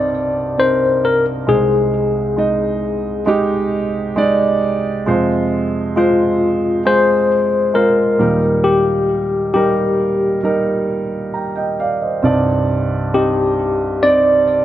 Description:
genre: pop.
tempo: 67 BPM.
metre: 4/4.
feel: straight.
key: C minor.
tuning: A4 = 440 Hz.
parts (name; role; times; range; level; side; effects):
tine electric piano; melody; 0.0-14.6 s; F4 to D5; -15 LUFS; left 3 dB; medium tremolo.
dark grand piano; accompaniment; 0.0-14.6 s; C2 to Bb5; -16 LUFS; right 2 dB; none.
room: moderate plate reverb, RT60 2.4 s.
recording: none.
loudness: -14 LUFS.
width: side -12 dB against mid.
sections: 0.0-14.6 A section.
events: none.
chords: 0.0 Cmadd9; 1.5 Ab/C; 5.1 Fm; 8.2 Eb; 12.2 Cmadd9.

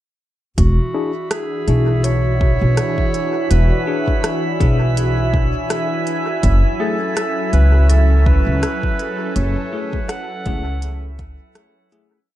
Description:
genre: ambient dub.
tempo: 82 BPM.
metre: 4/4.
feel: swing 56% on 16ths.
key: F# minor.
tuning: A4 = 440 Hz.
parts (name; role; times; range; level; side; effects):
warm clarinet; melody; 0.6-11.2 s; F#4 to F#5; -26 LUFS; right 1 dB; dub echo.
warm analog pad; sustained chords; 0.6-12.3 s; E3 to G#5; -25 LUFS; right 1 dB; chorus.
upright bass; bass; 0.6-11.4 s; E1 to C#2; -15 LUFS; equal; none.
electronic kick drum; drums; 0.6-11.4 s; none; -18 LUFS; equal; studio reverb.
organic electronic drum kit; drums; 0.6-12.1 s; hi-hat, rim click; -27 LUFS; equal; studio reverb, dub echo.
drifting glass-harmonics texture; texture; 1.1-12.3 s; E4 to E5; -26 LUFS; right 2 dB; chorus, built-in reverb.
bell-like tine electric piano; stabs; 0.9-12.2 s; A3 to G#4; -28 LUFS; left 5 dB; fast stereo tremolo, low-pass filter, dub echo.
room: light reverb.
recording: echo-heavy mix.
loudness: -15 LUFS.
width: side -14 dB against mid.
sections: 0.6-12.3 groove.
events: filter sweep on tine electric piano 0.6-12.3; fade-out 8.4-12.3.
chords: 0.6 E7; 6.4 F#m9.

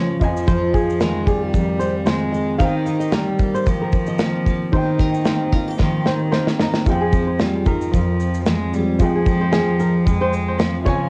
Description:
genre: acoustic pop.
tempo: 113 BPM.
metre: 4/4.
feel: swing 55% on 16ths.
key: unclear.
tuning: A4 = 438 Hz.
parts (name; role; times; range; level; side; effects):
warm cello; second line; 0.0-11.1 s; Eb3 to Ab3; -26 LUFS; equal; cassette tape.
dark upright piano; accompaniment; 0.0-11.1 s; Eb4 to Bb5; -30 LUFS; equal; cassette tape.
picked steel-string acoustic guitar; accompaniment; 0.0-11.1 s; F2 to G4; -24 LUFS; equal; double-tracked, cassette tape.
flamenco guitar; arpeggios; 0.0-11.0 s; Ab4 to F5; -28 LUFS; equal; cassette tape, analog delay.
modern studio drum kit; drums; 0.2-11.0 s; kick drum, shaker, snare drum; -23 LUFS; equal; cassette tape.
room: moderate studio reverb, RT60 0.6 s.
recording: home recording on cassette.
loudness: -19 LUFS.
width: mono.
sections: 0.0-6.9 A section; 6.9-11.1 B section.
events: drum fill 5.8-6.9.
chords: 0.2 Fm7; 2.6 Eb6; 6.9 Fmadd9.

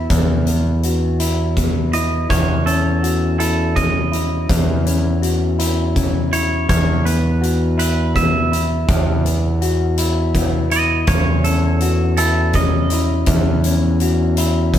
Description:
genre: post-rock.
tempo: 55 BPM (dotted quarters).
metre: 6/8.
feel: straight.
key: unclear.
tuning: A4 = 437 Hz.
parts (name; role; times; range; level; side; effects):
electric guitar through a small old amp; arpeggios; 0.0-14.8 s; E2 to F#4; -22 LUFS; left 4 dB; none.
twangy electric guitar; arpeggios; 0.0-13.3 s; A4 to E5; -22 LUFS; right 4 dB; none.
growling picked electric bass; bass; 0.0-14.8 s; E2; -18 LUFS; right 1 dB; overdrive.
huge arena drum kit; drums; 0.1-14.8 s; hi-hat, kick drum; -21 LUFS; equal; none.
room: moderate stone room reverb, RT60 1.3 s.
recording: band playing live in one room.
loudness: -15 LUFS.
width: side -10 dB against mid.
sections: 0.0-14.8 A section.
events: none.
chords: 0.0 Esus2; 2.3 F#m/E; 6.7 Esus2; 11.1 F#m/E.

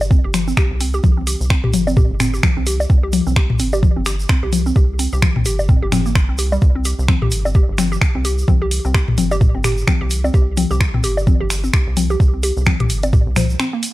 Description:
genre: minimal techno.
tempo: 129 BPM.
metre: 4/4.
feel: swing 58% on 16ths.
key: unclear.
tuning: A4 = 440 Hz.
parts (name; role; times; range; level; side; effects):
rubbery square bass; bass; 0.0-13.6 s; G1 to C2; -20 LUFS; equal; sidechain pumping.
egg shaker; percussion; 0.0-13.9 s; none; -31 LUFS; right 2 dB; none.
electronic bongos and toms; percussion; 0.0-13.5 s; none; -20 LUFS; left 4 dB; analog delay.
hollow square pluck; riff; 0.1-13.8 s; G3 to C5; -24 LUFS; right 2 dB; chorus, vintage 12-bit sampler grit, sidechain pumping, analog delay.
electronic kick drum; drums; 0.1-13.2 s; none; -14 LUFS; equal; none.
garage drum kit; drums; 0.3-13.9 s; finger snaps, hi-hat; -23 LUFS; equal; none.
room: digital ambience.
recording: dry, gritty hardware recording.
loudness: -14 LUFS.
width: side -17 dB against mid.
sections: 0.0-13.9 A section.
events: break 13.6-13.9.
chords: 0.0 C5.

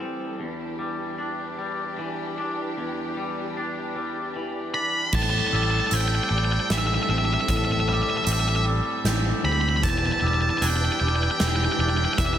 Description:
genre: post-rock.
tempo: 76 BPM.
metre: 3/4.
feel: straight.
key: A minor.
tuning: A4 = 439 Hz.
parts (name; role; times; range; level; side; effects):
clear studio string section; sustained chords; 0.0-12.4 s; E3 to A4; -34 LUFS; equal; none.
twangy electric guitar; arpeggios; 0.0-12.4 s; E2 to D4; -29 LUFS; left 2 dB; digital delay.
octave-fuzz lead guitar; melody; 4.7-12.4 s; E5 to B5; -25 LUFS; equal; distortion, digital delay.
picked electric bass; bass; 5.1-12.4 s; E1 to D2; -25 LUFS; equal; none.
huge arena drum kit; drums; 5.1-12.4 s; crash cymbal, hi-hat, kick drum, snare drum; -28 LUFS; right 1 dB; none.
glockenspiel with soft plastic mallets; arpeggios; 5.5-12.2 s; D6 to G6; -34 LUFS; right 4 dB; digital delay.
room: light reverb, small room ambience.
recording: none.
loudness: -22 LUFS.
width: side -10 dB against mid.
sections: 0.0-5.1 A section; 5.1-12.4 B section.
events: none.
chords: 0.4 Em7; 5.1 Am7; 9.8 Em7.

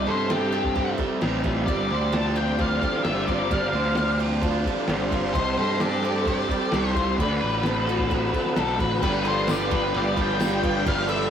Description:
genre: rock, shoegaze and dream pop.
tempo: 131 BPM.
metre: 4/4.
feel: straight.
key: G mixolydian.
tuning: A4 = 441 Hz.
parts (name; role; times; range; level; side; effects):
octave-fuzz lead guitar; melody; 0.0-11.3 s; G4 to A5; -28 LUFS; left 4 dB; distortion.
picked twelve-string acoustic guitar; arpeggios; 0.0-11.3 s; F4 to Eb5; -34 LUFS; right 3 dB; none.
overdriven electric guitar; riff; 0.0-11.3 s; C3 to C5; -28 LUFS; right 5 dB; none.
raw garage guitar; riff; 0.0-11.3 s; G2 to B4; -30 LUFS; left 4 dB; overdrive.
fuzz picked electric bass; bass; 0.0-11.3 s; G1 to G2; -27 LUFS; equal; overdrive.
lo-fi sampler-style drum kit; drums; 0.1-11.2 s; crash cymbal, kick drum, ride cymbal, snare drum; -30 LUFS; equal; none.
phased string machine; sustained chords; 2.0-11.3 s; B4 to E6; -34 LUFS; equal; ensemble chorus, phaser.
tambourine; percussion; 9.5-10.5 s; none; -41 LUFS; left 7 dB; none.
room: wet small room reverb, RT60 0.5 s.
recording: rough rehearsal-room recording.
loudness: -21 LUFS.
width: side -8 dB against mid.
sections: 0.0-9.0 A section; 9.0-11.3 B section.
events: none.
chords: 0.0 Cm6; 1.7 G7sus4; 5.4 Cm6; 7.2 D13; 9.0 G7.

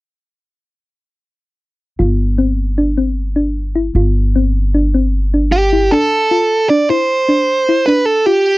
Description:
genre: progressive instrumental, progressive.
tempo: 153 BPM.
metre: 5/4.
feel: straight.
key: unclear.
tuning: A4 = 441 Hz.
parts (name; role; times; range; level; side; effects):
thumb-piano-like synth pluck; arpeggios; 2.0-8.5 s; C4 to F4; -16 LUFS; left 2 dB; chorus.
upright bass; bass; 2.0-5.9 s; G1; -15 LUFS; equal; none.
bluesy overdriven lead guitar; melody; 5.5-8.6 s; G4 to D5; -12 LUFS; right 2 dB; distortion.
room: little or no reverb.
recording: dry, close 1970s-style studio recording.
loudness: -12 LUFS.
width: side -19 dB against mid.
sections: 2.0-5.9 A section; 5.9-8.6 B section.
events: none.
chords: 2.0 G7sus4; 5.9 G9sus4 (rootless).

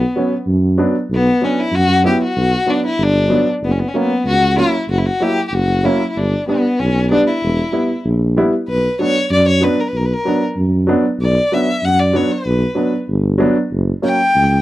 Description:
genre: klezmer.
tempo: 95 BPM.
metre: 2/4.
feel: straight.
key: unclear.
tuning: A4 = 440 Hz.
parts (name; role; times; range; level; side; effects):
clear violin; melody; 0.0-14.6 s; B3 to G5; -17 LUFS; left 2 dB; none.
mellow tuba; bass; 0.0-14.6 s; E1 to F#2; -16 LUFS; equal; none.
warm upright piano; accompaniment; 0.2-14.2 s; F#3 to E4; -17 LUFS; right 1 dB; none.
room: small room ambience.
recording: dry, close 1970s-style studio recording.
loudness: -13 LUFS.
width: side -15 dB against mid.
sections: 0.0-8.7 A section; 8.7-14.6 A section.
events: none.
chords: 0.0 Bm; 3.6 F#; 6.2 G; 7.4 Em; 8.7 Bm; 13.7 F#.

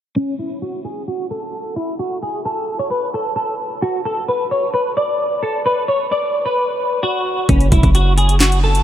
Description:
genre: hip hop, trap.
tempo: 131 BPM.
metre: 4/4.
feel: half-time.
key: F# minor.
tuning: A4 = 440 Hz.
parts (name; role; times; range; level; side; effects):
clean electric guitar; melody; 0.2-8.8 s; C#4 to D5; -18 LUFS; equal; ensemble chorus, low-pass filter, diffuse ambient delay.
hard-hitting 808-style bass; bass; 7.5-8.8 s; E1 to F#1; -14 LUFS; equal; none.
trap drum kit; drums; 7.5-8.8 s; handclaps, hi-hat, kick drum, snare drum; -16 LUFS; equal; overdrive.
room: moderate huge ambient reverb, RT60 6.3 s.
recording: dreamy mix soaked in reverb.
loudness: -16 LUFS.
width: side -11 dB against mid.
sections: 0.2-7.5 A section; 7.5-8.8 B section.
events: filter sweep on clean electric guitar 0.2-7.5.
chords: none.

